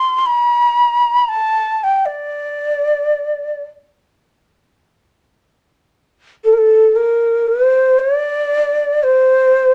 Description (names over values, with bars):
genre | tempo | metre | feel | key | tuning
turkish | free time | none | none | D makam hicaz | A4 = 439 Hz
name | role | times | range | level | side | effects
breathy reedy ney | solo | 0.0-9.7 s | A4 to C6 | -15 LUFS | equal | none
room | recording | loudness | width
moderate studio reverb, RT60 0.6 s | none | -15 LUFS | mono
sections
0.0-6.5 A section; 6.5-9.7 B section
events
none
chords
none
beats
free time